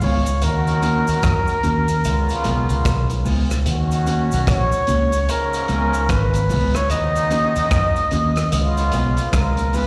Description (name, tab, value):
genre	roots reggae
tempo	74 BPM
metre	4/4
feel	swing 62% on 16ths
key	Eb minor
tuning	A4 = 439 Hz
part	warm flugelhorn	melody	0.0-9.9 s	Bb4 to Eb5	-24 LUFS	equal	tape echo, plate reverb, slapback echo
part	mellow electric guitar	accompaniment	0.0-9.9 s	Ab3 to Gb4	-30 LUFS	equal	spring reverb, tape echo, plate reverb, slapback echo
part	vintage muted fingered electric bass	bass	0.0-9.9 s	Ab1 to Gb2	-22 LUFS	equal	none
part	crunchy breakbeat drum kit	drums	0.0-9.9 s	hi-hat, kick drum, rim click	-27 LUFS	equal	none
part	cabasa	percussion	0.0-9.9 s	none	-42 LUFS	equal	none
part	muted trombone section	second line	0.4-9.7 s	Ab2 to Gb4	-30 LUFS	equal	tape echo, plate reverb, slapback echo
room	light reverb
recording	live gig heard through the venue's PA, recital hall reverb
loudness	-19 LUFS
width	mono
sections	0.0-9.9 A section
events	none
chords	0.4 Ebm7; 2.0 Db7; 3.7 Ebm7; 5.3 Db7; 6.9 Ebm7; 8.5 Db7